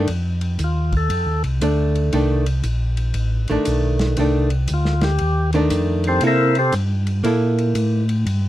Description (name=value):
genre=soul jazz organ trio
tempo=117 BPM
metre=4/4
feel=swing 66% on 8ths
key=unclear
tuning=A4 = 440 Hz
part: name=archtop guitar, miked and amplified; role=accompaniment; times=0.0-8.0 s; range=Eb3 to A4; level=-20 LUFS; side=right 1 dB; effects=none
part: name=mellow tonewheel organ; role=bass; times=0.0-8.5 s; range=A1 to C3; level=-19 LUFS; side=equal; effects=chorus vibrato, slow rotary speaker
part: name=warm soul drum kit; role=drums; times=0.1-8.4 s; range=hi-hat, kick drum, ride cymbal, snare drum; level=-31 LUFS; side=equal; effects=none
part: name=percussive tonewheel organ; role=melody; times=0.6-1.4, 4.7-6.7 s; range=C4 to E5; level=-21 LUFS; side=left 1 dB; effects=slow rotary speaker
room=light reverb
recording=dark, warm production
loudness=-17 LUFS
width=side -14 dB against mid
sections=0.0-8.5 A section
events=tonewheel organ solo 0.0-8.5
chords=0.1 F13; 6.2 C6